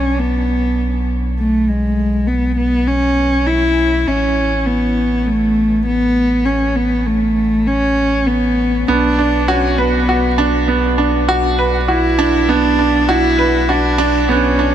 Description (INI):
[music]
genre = piano and strings electronica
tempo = 100 BPM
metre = 4/4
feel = straight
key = B dorian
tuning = A4 = 440 Hz
[part]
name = dark cello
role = melody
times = 0.0-14.7 s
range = G#3 to E4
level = -15 LUFS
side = equal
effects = shimmer reverb, digital delay
[part]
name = warm sub bass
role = bass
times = 0.0-14.7 s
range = A1 to B1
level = -20 LUFS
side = equal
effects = none
[part]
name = bright upright piano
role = riff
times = 8.9-14.7 s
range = B3 to B4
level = -15 LUFS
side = right 3 dB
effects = shimmer reverb, digital delay
[sound]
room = moderate huge ambient reverb, RT60 5.6 s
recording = none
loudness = -13 LUFS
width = side -10 dB against mid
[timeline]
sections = 0.0-14.7 A section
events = none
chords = 0.0 N.C.; 4.1 Aadd9; 8.9 Bm